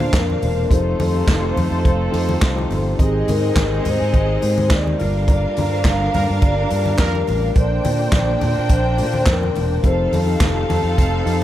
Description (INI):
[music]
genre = disco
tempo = 105 BPM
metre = 4/4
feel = straight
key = Bb major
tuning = A4 = 439 Hz
[part]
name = vibraphone with soft mallets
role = melody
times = 0.0-11.2 s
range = Ab4 to F5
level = -23 LUFS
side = left 2 dB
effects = analog delay
[part]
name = dark studio string section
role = second line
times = 0.0-11.4 s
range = A3 to G5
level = -25 LUFS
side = right 2 dB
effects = none
[part]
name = tine electric piano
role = accompaniment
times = 0.0-11.4 s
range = Bb2 to D5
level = -26 LUFS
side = left 4 dB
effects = lush chorus
[part]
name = muted French horn section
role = sustained chords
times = 0.0-11.4 s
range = F3 to A4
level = -29 LUFS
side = right 2 dB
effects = none
[part]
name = fingered electric bass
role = bass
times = 0.0-11.4 s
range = E1 to Bb2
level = -20 LUFS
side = right 1 dB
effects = none
[part]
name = congas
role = percussion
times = 0.0-11.1 s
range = none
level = -28 LUFS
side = left 2 dB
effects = none
[part]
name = vintage drum kit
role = drums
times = 0.1-11.4 s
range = handclaps, hi-hat, kick drum, snare drum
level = -20 LUFS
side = equal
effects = none
[part]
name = group handclap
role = percussion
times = 0.1-10.5 s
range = none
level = -36 LUFS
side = right 14 dB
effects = none
[part]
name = warm horn section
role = stabs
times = 6.1-7.2 s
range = G3 to Bb4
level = -30 LUFS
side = right 2 dB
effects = analog delay
[sound]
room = small room ambience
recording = none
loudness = -15 LUFS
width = side -12 dB against mid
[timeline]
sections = 0.0-11.4 A section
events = band accent 5.3-7.6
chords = 0.0 Bbmaj9; 0.7 F7; 3.0 Abmaj7; 5.0 Gm7; 7.6 Bbmaj9; 9.8 F7